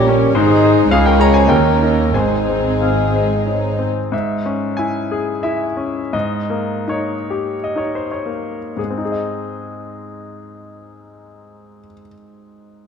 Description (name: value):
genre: classical, romantic movement for piano and orchestra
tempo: 55-109 BPM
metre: 3/4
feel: rubato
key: Ab major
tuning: A4 = 438 Hz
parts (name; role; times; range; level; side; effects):
- bright grand piano; melody; 0.0-12.9 s; Db2 to Bb5; -19 LUFS; left 2 dB; none
- warm symphonic violin section; melody; 0.0-3.9 s; G4 to Db5; -27 LUFS; left 8 dB; none
- mellow clarinet; second line; 0.0-4.1 s; C5 to F5; -25 LUFS; equal; none
- warm symphonic violin section; second line; 0.0-3.9 s; Eb4 to Bb4; -26 LUFS; left 4 dB; none
- dark symphonic viola section; accompaniment; 0.0-3.9 s; C4 to Eb4; -23 LUFS; right 3 dB; none
- warm bassoon; accompaniment; 0.0-3.7 s; G3 to Bb3; -22 LUFS; right 3 dB; none
- warm French horn section; sustained chords; 0.0-3.8 s; G3 to Eb4; -20 LUFS; left 3 dB; none
- dark symphonic double bass section; bass; 0.0-3.9 s; Ab1 to Eb2; -21 LUFS; right 3 dB; none
- warm symphonic cello section; bass; 0.0-3.9 s; Db2 to Bb2; -21 LUFS; right 3 dB; none
room: moderate scoring stage reverb, RT60 1.5 s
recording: dark, warm production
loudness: -15 LUFS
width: side -6 dB against mid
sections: 0.0-4.1 A section; 4.1-8.8 B section; 8.8-12.9 C section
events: slowing down 3.1-8.8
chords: 0.3 Ab; 0.9 Db5; 1.5 Eb7; 2.1 Ab; 4.1 Dbm/Ab; 6.1 Eb/Ab; 8.8 Ab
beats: | 0.34 0.90 1.47 | 2.13 2.80 3.45 | 4.12 4.78 5.44 | 6.13 6.88 7.75 | 8.77 9.69 10.61 | 11.55 12.47